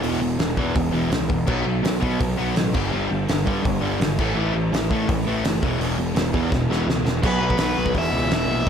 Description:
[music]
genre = punk rock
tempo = 167 BPM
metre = 4/4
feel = straight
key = unclear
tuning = A4 = 439 Hz
[part]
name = distorted electric guitar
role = riff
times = 0.0-8.7 s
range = E2 to B3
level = -27 LUFS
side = left 10 dB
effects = distortion
[part]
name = sludgy distorted guitar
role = riff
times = 0.0-8.7 s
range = E2 to B3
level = -27 LUFS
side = right 8 dB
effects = overdrive
[part]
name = thick fuzz guitar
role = riff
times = 0.0-8.7 s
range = E2 to B3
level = -28 LUFS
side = right 1 dB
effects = distortion
[part]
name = fuzz picked electric bass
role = bass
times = 0.0-8.7 s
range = E1 to B2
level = -26 LUFS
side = equal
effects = overdrive
[part]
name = loose indie drum kit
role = drums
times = 0.0-8.7 s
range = crash cymbal, hi-hat, kick drum, snare drum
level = -24 LUFS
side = equal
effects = none
[part]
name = overdriven electric guitar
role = melody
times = 7.3-8.7 s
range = B4 to E5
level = -25 LUFS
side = equal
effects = none
[sound]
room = little or no reverb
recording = none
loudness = -19 LUFS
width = side -8 dB against mid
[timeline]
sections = 0.0-7.2 A section; 7.2-8.7 B section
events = drum fill 6.5-7.2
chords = 0.0 E5; 1.5 B5; 2.7 G5; 4.2 A5; 5.6 E5; 7.2 B5; 8.0 E5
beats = | 0.04 0.40 0.76 1.12 | 1.48 1.84 2.21 2.56 | 2.93 3.29 3.65 4.00 | 4.37 4.72 5.08 5.44 | 5.80 6.16 6.52 6.88 | 7.24 7.59 7.95 8.31 | 8.67

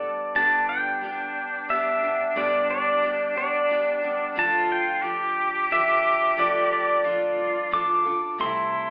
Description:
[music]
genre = acoustic folk duo or small band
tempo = 90 BPM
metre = 3/4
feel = straight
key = unclear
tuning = A4 = 441 Hz
[part]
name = pedal steel guitar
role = melody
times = 0.0-8.9 s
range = D5 to D6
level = -25 LUFS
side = equal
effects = none
[part]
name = picked steel-string acoustic guitar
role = accompaniment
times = 0.0-8.9 s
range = G2 to A4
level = -36 LUFS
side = equal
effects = none
[part]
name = upright bass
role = bass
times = 0.0-8.9 s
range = G1 to D2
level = -53 LUFS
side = equal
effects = none
[part]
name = bright cello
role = second line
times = 0.4-8.9 s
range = D4 to G4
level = -29 LUFS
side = equal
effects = none
[sound]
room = wet large studio reverb, RT60 1.1 s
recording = band playing live in one room, telephone sound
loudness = -23 LUFS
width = mono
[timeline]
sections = 0.3-8.9 A section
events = none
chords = 0.3 G; 4.4 Dm; 8.4 Am/C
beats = | 0.35 1.02 1.69 | 2.36 3.03 3.70 | 4.37 5.04 5.71 | 6.38 7.05 7.72 | 8.39

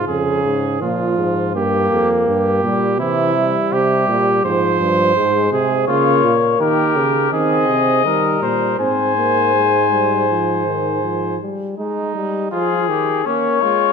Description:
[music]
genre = classical, imitative canzona for brass ensemble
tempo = 82 BPM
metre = 4/4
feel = straight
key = F minor, Ab major from 5.9 s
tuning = A4 = 441 Hz
[part]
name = clear flugelhorn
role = second line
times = 0.0-13.9 s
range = Db4 to C5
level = -20 LUFS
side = right 4 dB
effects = none
[part]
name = clear bass trombone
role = bass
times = 0.0-11.4 s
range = F2 to Eb3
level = -20 LUFS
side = right 2 dB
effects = none
[part]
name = warm trombone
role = accompaniment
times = 0.1-13.9 s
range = Db3 to C4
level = -20 LUFS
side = equal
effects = none
[part]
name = mellow trumpet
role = melody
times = 5.9-13.9 s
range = Ab4 to Ab5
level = -18 LUFS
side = left 13 dB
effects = none
[sound]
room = moderate recital hall reverb, RT60 1.6 s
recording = dark, warm production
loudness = -14 LUFS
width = side -6 dB against mid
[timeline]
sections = 0.1-11.8 A section; 11.8-13.9 B section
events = none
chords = 0.1 Db/F; 1.5 Fsus24; 3.0 C; 4.4 Fm; 5.9 Bbm; 7.3 Ab/Eb; 8.1 Eb; 8.8 Ab; 11.8 Ab5; 13.3 Bbm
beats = | 0.08 0.81 1.54 2.27 | 3.00 3.72 4.45 5.17 | 5.88 6.61 7.33 8.05 | 8.79 9.54 10.29 11.03 | 11.78 12.52 13.26

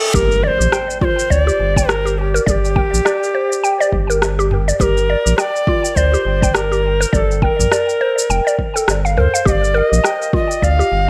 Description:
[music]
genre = organic downtempo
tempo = 103 BPM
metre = 4/4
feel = swing 58% on 16ths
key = G minor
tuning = A4 = 441 Hz
[part]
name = breathy bright Native American-style cedar flute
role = melody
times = 0.0-11.1 s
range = G4 to F5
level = -21 LUFS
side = equal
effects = analog delay
[part]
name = reverse cymbal and impact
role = sound effects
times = 0.0-2.5 s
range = none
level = -27 LUFS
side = equal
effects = none
[part]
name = mallet-like synth pluck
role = arpeggios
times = 0.1-11.1 s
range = F4 to G5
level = -22 LUFS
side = equal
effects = chorus, cassette tape, analog delay
[part]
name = round analog bass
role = bass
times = 0.1-11.1 s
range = F1 to D2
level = -20 LUFS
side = equal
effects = tube saturation, sidechain pumping
[part]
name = electronic kick drum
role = drums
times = 0.1-10.8 s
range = none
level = -21 LUFS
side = equal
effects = none
[part]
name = afro-pop drum kit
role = drums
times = 0.2-10.9 s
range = rim click, shaker, toms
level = -22 LUFS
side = equal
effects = none
[sound]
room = light reverb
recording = echo-heavy mix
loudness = -16 LUFS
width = mono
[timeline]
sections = 0.1-11.1 A section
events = impact 0.1-2.5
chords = 0.1 Gm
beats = | 0.14 0.73 1.31 1.89 | 2.48 3.06 3.64 4.22 | 4.80 5.39 5.97 6.55 | 7.13 7.72 8.30 8.88 | 9.47 10.05 10.63

